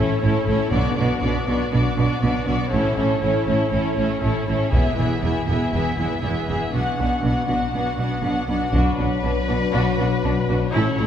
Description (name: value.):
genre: cinematic, epic orchestral film score.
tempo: 120 BPM.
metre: 4/4.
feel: straight.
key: B dorian.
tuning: A4 = 436 Hz.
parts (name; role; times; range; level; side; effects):
warm symphonic violin section; second line; 0.0-11.1 s; D4 to F#5; -26 LUFS; left 2 dB; none.
rich symphonic viola section; accompaniment; 0.0-11.1 s; B3 to E4; -25 LUFS; equal; none.
rich symphonic cello section; bass; 0.0-11.1 s; E2 to B2; -25 LUFS; right 2 dB; none.
warm symphonic double bass section; bass; 0.0-11.1 s; E1 to B1; -25 LUFS; right 1 dB; none.
taiko ensemble; drums; 0.7-1.7, 4.7-5.7, 8.7-9.7 s; none; -25 LUFS; equal; none.
warm symphonic violin section; melody; 8.7-11.1 s; B4 to C#5; -27 LUFS; left 4 dB; none.
mellow French horn section; sustained chords; 8.7-11.1 s; F#3 to D4; -24 LUFS; left 5 dB; none.
room: wet church reverb, RT60 3.2 s.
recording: recorded in a church or concert hall.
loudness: -19 LUFS.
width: side -9 dB against mid.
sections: 0.0-8.7 A section; 8.7-11.1 B section.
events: none.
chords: 0.0 A; 0.7 Bm; 2.7 A; 4.7 E; 6.7 Bm.